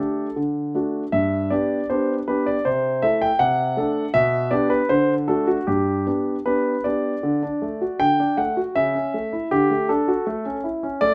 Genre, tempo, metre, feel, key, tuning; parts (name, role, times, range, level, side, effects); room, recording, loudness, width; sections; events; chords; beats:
classical-period piano sonatina; 79 BPM; 2/4; rubato; G major, D major from 7.2 s; A4 = 441 Hz
clear concert grand piano; solo; 0.0-11.1 s; G2 to G5; -22 LUFS; equal
light reverb; close, detailed microphones; -22 LUFS; mono
0.0-7.2 A section; 7.2-11.1 B section
0.4 D; 1.1 G; 2.7 Am/C; 3.4 D7/C; 4.1 G/B; 4.9 D7; 5.7 G; 7.2 D; 8.8 A/C#; 9.5 D; 10.3 A
0.37 | 1.14 1.91 | 2.66 3.40 | 4.14 4.90 | 5.67 6.46 | 7.23 8.00 | 8.75 9.51 | 10.26 11.01